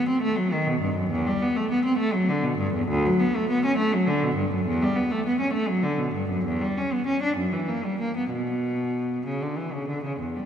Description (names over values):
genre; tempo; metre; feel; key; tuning
classical, baroque-style suite movement for unaccompanied cello; 66 BPM (dotted quarters); 6/8; uneven beats, rubato; B minor; A4 = 440 Hz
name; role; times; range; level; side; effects
rich cello; solo; 0.0-10.5 s; D2 to D4; -23 LUFS; equal; none
room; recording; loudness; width
wet church reverb, RT60 3.5 s; none; -23 LUFS; side -8 dB against mid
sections
0.0-10.2 A section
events
none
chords
none